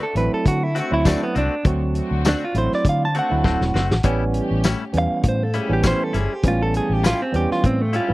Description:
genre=straight-eighth soul blues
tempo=100 BPM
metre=4/4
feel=straight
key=D mixolydian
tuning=A4 = 440 Hz
part: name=direct-recorded clean electric guitar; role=melody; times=0.0-8.1 s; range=A3 to A5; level=-23 LUFS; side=right 1 dB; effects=spring reverb
part: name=muted studio string section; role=sustained chords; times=0.0-8.1 s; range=A3 to G4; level=-34 LUFS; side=left 2 dB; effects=none
part: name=direct-recorded clean electric guitar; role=stabs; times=0.0-8.1 s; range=A2 to F#4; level=-27 LUFS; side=left 5 dB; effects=none
part: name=barky tine electric piano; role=accompaniment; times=0.2-8.1 s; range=E3 to F#4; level=-24 LUFS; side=right 3 dB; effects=none
part: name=vintage muted fingered electric bass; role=bass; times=0.2-8.1 s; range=D1 to D3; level=-22 LUFS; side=left 1 dB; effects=none
part: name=warm soul drum kit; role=drums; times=0.2-8.1 s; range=hi-hat, kick drum, snare drum, tambourine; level=-20 LUFS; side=left 1 dB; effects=none
room=little or no reverb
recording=dry, close 1970s-style studio recording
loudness=-18 LUFS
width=side -19 dB against mid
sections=0.0-8.1 A section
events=clean electric guitar solo 0.0-8.1; drum fill 3.4-4.0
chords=0.0 D7; 4.0 A7

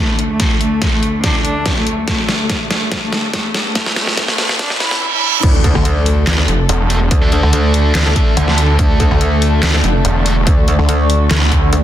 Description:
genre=heavy wobble dubstep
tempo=143 BPM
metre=4/4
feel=half-time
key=unclear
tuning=A4 = 440 Hz
part: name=rich cello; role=melody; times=0.0-5.4 s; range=A3 to E4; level=-21 LUFS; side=left 1 dB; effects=ping-pong delay
part: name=warm studio string section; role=sustained chords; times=0.0-11.8 s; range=D2 to A4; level=-24 LUFS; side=left 2 dB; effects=sidechain pumping, low-pass filter
part: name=riser, reverse cymbal and impact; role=sound effects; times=2.2-7.1 s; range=none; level=-23 LUFS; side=right 3 dB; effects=none
part: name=warbly tape-like pad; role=texture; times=0.2-11.8 s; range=D3 to D6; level=-24 LUFS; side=equal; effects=chorus, built-in reverb, sidechain pumping
part: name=dubstep drum kit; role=drums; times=0.2-11.8 s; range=crash cymbal, handclaps, hi-hat, snare drum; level=-18 LUFS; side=equal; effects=none
part: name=electronic kick drum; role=drums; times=0.4-11.6 s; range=none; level=-16 LUFS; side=equal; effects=none
part: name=metallic wobble bass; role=bass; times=5.4-11.8 s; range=F1 to D2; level=-14 LUFS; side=equal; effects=chorus, overdrive
part: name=snarling distorted saw bass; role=bass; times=5.8-11.7 s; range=E1 to D2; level=-14 LUFS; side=equal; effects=distortion, overdrive
part: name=distorted electric guitar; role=stabs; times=6.9-10.3 s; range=A3 to A4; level=-22 LUFS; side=right 2 dB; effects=overdrive, ping-pong delay
room=light reverb, digital ambience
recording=dense, heavily limited modern master, high-pass filter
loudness=-12 LUFS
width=side -11 dB against mid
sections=0.0-5.4 A section; 5.4-11.8 B section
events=build-up 0.0-5.4; drum fill 0.0-5.0; filter sweep on string section 0.0-5.4; filter sweep 0.0-5.4; riser 2.2-5.4; reverse cymbal 4.6-5.4; drop 5.4-11.8; impact 5.4-7.1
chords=0.0 D5

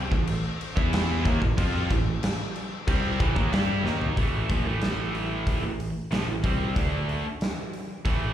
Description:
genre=hard rock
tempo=92 BPM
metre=4/4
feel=straight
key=unclear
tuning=A4 = 440 Hz
part: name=lush unison pad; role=sustained chords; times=0.0-4.1 s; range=A4 to C6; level=-46 LUFS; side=equal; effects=none
part: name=tight distorted guitar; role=riff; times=0.1-8.3 s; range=A2 to G4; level=-33 LUFS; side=left 11 dB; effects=distortion, slapback echo
part: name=tight distorted guitar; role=riff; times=0.1-8.3 s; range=A2 to G4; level=-31 LUFS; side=right 11 dB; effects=distortion, slapback echo
part: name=picked electric bass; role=bass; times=0.1-8.3 s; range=A1 to G2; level=-28 LUFS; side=equal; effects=none
part: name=big rock drum kit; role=drums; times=0.1-8.2 s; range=crash cymbal, hi-hat, kick drum, snare drum, toms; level=-28 LUFS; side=equal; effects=none
room=little or no reverb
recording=live gig heard through the venue's PA, club reverb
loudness=-24 LUFS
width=side -11 dB against mid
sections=0.0-4.2 A section; 4.2-8.3 B section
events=drum fill 3.8-4.2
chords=0.0 Am

